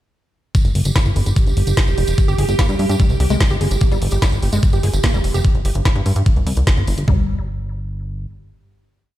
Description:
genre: psychedelic trance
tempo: 147 BPM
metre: 4/4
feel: straight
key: unclear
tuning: A4 = 439 Hz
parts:
  - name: evolving wavetable pad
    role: sustained chords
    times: 0.9-5.5 s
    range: G4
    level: -27 LUFS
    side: right 5 dB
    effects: phaser, built-in reverb, sidechain pumping
  - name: drum and bass drum kit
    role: drums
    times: 0.5-7.2 s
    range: kick drum, toms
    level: -16 LUFS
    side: equal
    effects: overdrive
  - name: drum and bass drum kit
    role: drums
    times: 0.5-7.1 s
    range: hi-hat, snare drum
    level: -25 LUFS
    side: equal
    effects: overdrive
  - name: plucky analog bass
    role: bass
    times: 0.6-8.3 s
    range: F1 to G2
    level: -18 LUFS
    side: equal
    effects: none
  - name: tambourine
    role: percussion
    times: 0.6-5.4 s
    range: none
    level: -32 LUFS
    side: right 2 dB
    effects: none
  - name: woody wave-folded pluck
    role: riff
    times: 2.3-7.3 s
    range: G3 to Ab4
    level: -26 LUFS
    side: moving between left 7 dB and right 7 dB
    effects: chorus, auto-pan, sidechain pumping, tape echo
room: digital ambience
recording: played on a big sound system in a bare room, stone room reverb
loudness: -14 LUFS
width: side -14 dB against mid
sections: 0.5-7.1 groove; 7.1-9.2 final note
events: none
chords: 0.5 Fsus2; 7.1 N.C.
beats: | 0.55 0.96 1.36 1.77 | 2.18 2.59 3.00 3.40 | 3.81 4.22 4.63 5.04 | 5.45 5.85 6.26 6.67 | 7.08 7.49 7.89

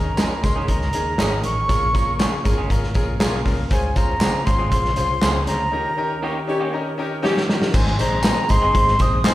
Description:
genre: uptempo 1960s-style soul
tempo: 119 BPM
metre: 4/4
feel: straight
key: Ab major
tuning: A4 = 440 Hz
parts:
  - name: breathy jazz flute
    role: melody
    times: 0.0-9.3 s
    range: Ab5 to Eb6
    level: -22 LUFS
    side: equal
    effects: slapback echo
  - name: clear baby grand piano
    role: accompaniment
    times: 0.0-9.3 s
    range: Ab3 to Eb5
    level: -26 LUFS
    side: left 4 dB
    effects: slapback echo
  - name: mellow tonewheel organ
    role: sustained chords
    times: 0.0-9.3 s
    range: Db3 to C5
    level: -32 LUFS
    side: right 1 dB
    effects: slow rotary speaker, chorus vibrato
  - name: vintage muted fingered electric bass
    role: bass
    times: 0.0-9.3 s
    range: G1 to Db3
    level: -24 LUFS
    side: equal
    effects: none
  - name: clear saxophone section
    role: second line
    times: 0.2-7.6 s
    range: Db4 to Ab4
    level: -28 LUFS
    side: right 1 dB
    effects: slapback echo
  - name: electric guitar through a small old amp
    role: stabs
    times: 0.2-9.3 s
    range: Eb3 to Ab4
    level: -29 LUFS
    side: right 4 dB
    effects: slapback echo
  - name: vintage drum kit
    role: drums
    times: 0.2-9.3 s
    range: crash cymbal, hi-hat, kick drum, snare drum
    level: -21 LUFS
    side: equal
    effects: none
  - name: handclaps and tambourine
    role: percussion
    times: 0.2-9.3 s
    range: none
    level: -31 LUFS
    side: right 1 dB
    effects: slapback echo
room: light reverb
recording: live gig heard through the venue's PA, recital hall reverb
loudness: -17 LUFS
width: side -15 dB against mid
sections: 0.0-7.7 A section; 7.7-9.3 B section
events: break 5.7-7.7; drum fill 7.2-7.7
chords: 0.0 Eb7sus4; 1.7 Bbm7; 3.7 Dbmaj7; 5.7 Eb7; 7.7 Ab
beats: 0.18 0.69 1.19 | 1.69 2.20 2.70 3.21 | 3.71 4.21 4.72 5.22 | 5.73 6.23 6.73 7.24 | 7.74 8.24 8.75 9.25

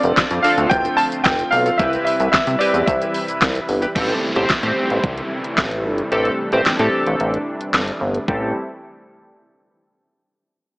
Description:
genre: dance-pop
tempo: 111 BPM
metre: 4/4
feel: straight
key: A minor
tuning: A4 = 441 Hz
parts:
  - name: clear grand piano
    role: melody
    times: 0.0-3.6 s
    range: D5 to A5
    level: -19 LUFS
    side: equal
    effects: digital delay
  - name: chorused retro synth keys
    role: accompaniment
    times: 0.0-8.5 s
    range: C4 to C5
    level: -22 LUFS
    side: equal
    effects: sidechain pumping, low-pass filter
  - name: soft supersaw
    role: sustained chords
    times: 0.0-8.5 s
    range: C3 to B4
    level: -26 LUFS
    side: equal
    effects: sidechain pumping, low-pass filter
  - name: chorused synth bass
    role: bass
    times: 0.0-8.5 s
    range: E1 to C3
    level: -21 LUFS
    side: equal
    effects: sidechain pumping
  - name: pop drum kit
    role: drums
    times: 0.0-8.4 s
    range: crash cymbal, handclaps, hi-hat, kick drum, shaker, snare drum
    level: -20 LUFS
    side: equal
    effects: overdrive
  - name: downlifter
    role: sound effects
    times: 4.0-8.3 s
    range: none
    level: -30 LUFS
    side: equal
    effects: none
room: light reverb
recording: AM radio sound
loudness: -16 LUFS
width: side -26 dB against mid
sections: 0.0-4.0 A section; 4.0-8.3 B section; 8.3-10.4 C section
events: filter sweep 4.0-8.3; kick muted 6.1-8.3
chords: 0.0 F6; 1.8 Cmaj7; 4.0 Am7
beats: 0.17 0.71 1.25 | 1.79 2.33 2.88 3.42 | 3.96 4.50 5.04 5.58 | 6.12 6.66 7.20 7.74 | 8.28

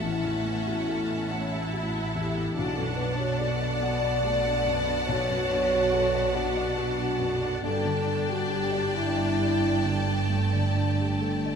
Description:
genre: cinematic, emotional film score for orchestra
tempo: 47 BPM (dotted quarters)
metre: 6/8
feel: uneven beats, rubato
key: B minor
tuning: A4 = 440 Hz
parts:
  - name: rich studio violin section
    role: melody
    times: 0.0-11.6 s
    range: A5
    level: -37 LUFS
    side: left 4 dB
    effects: none
  - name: rich symphonic violin section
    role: second line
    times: 0.0-11.6 s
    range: D5 to G5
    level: -34 LUFS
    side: left 1 dB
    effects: none
  - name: felt-muted upright piano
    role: accompaniment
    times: 0.0-11.6 s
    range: A1 to G5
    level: -34 LUFS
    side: left 2 dB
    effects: none
  - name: rich symphonic viola section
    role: accompaniment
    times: 0.0-11.6 s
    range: A3 to F#4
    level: -35 LUFS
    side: right 2 dB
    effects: none
  - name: dark French horn section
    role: sustained chords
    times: 0.0-11.6 s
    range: C#4 to D5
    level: -28 LUFS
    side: left 2 dB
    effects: none
  - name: concert harp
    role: arpeggios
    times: 0.0-11.6 s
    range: G2 to G5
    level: -37 LUFS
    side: left 6 dB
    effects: none
  - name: clear symphonic double bass section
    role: bass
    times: 0.0-11.6 s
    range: G1 to B1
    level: -32 LUFS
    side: right 5 dB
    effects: none
  - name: rich studio cello section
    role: bass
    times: 0.0-11.6 s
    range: G2 to B2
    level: -33 LUFS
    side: right 4 dB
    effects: none
room: wet concert hall reverb, RT60 1.9 s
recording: none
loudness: -24 LUFS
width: side -6 dB against mid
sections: 0.0-11.6 A section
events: none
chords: 0.0 F#m7/A; 2.6 Bm7; 7.6 Gsus2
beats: | 0.04 1.31 | 2.56 3.82 | 5.08 6.35 | 7.64 8.95 | 10.30

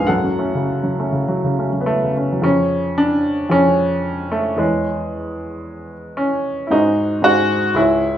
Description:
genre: classical, romantic character piece for solo piano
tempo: 99-118 BPM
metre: 4/4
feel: rubato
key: unclear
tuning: A4 = 440 Hz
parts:
  - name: warm upright piano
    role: solo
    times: 0.0-8.2 s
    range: C#2 to G#5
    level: -16 LUFS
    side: equal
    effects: none
room: wet large studio reverb, RT60 1.1 s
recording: heard from further back in the room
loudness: -16 LUFS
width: side -10 dB against mid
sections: 0.0-2.5 A section; 2.5-8.2 B section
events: none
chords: 0.1 F#m; 2.5 C#/E#; 4.6 C#m/E; 6.7 G#7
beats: | 0.08 0.68 1.28 1.88 | 2.45 3.00 3.53 4.07 | 4.60 5.13 5.67 6.19 | 6.73 7.25 7.78

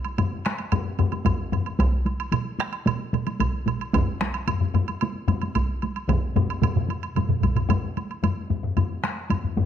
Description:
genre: japanese traditional, taiko drum ensemble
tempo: 112 BPM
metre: 4/4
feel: straight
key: none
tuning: none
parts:
  - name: woodblock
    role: percussion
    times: 0.0-9.4 s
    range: none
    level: -33 LUFS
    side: right 7 dB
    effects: none
  - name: taiko ensemble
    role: percussion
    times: 0.1-9.7 s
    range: none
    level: -28 LUFS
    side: right 2 dB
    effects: none
  - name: taiko ensemble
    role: percussion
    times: 0.2-9.7 s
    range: none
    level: -25 LUFS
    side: left 4 dB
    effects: none
  - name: taiko ensemble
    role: percussion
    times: 1.3-7.6 s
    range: none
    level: -26 LUFS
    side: right 1 dB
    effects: none
  - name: taiko ensemble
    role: percussion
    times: 2.3-7.8 s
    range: none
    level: -27 LUFS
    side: right 5 dB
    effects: none
room: moderate recital hall reverb, RT60 1.2 s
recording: close, detailed microphones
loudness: -22 LUFS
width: side -9 dB against mid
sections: 0.0-8.2 A section; 8.2-9.7 B section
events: none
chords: none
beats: 0.18 0.72 1.26 | 1.80 2.33 2.87 3.41 | 3.95 4.48 5.02 5.56 | 6.09 6.63 7.16 7.70 | 8.23 8.77 9.30

